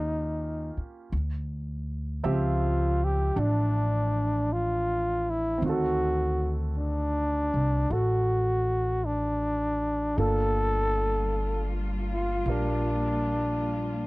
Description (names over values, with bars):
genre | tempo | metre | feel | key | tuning
jazz ballad | 53 BPM | 4/4 | swing 69% on 8ths | unclear | A4 = 440 Hz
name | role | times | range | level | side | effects
breathy flugelhorn | melody | 0.0-14.1 s | D4 to A4 | -28 LUFS | equal | none
clear concert grand piano | accompaniment | 0.0-14.1 s | Eb3 to E5 | -34 LUFS | right 3 dB | none
upright bass | bass | 0.0-14.1 s | G1 to Eb2 | -29 LUFS | equal | none
rich chamber cello section | sustained chords | 10.2-14.1 s | G3 to F4 | -37 LUFS | left 1 dB | none
room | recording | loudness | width
little or no reverb | dry, close 1970s-style studio recording | -25 LUFS | side -22 dB against mid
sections
0.0-14.1 A section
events
none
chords
0.0 Eb9; 1.1 Dm11; 5.6 D7b9; 10.2 Gm9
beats
0.00 | 1.12 2.24 3.37 4.50 | 5.63 6.76 7.89 9.04 | 10.18 11.31 12.46 13.59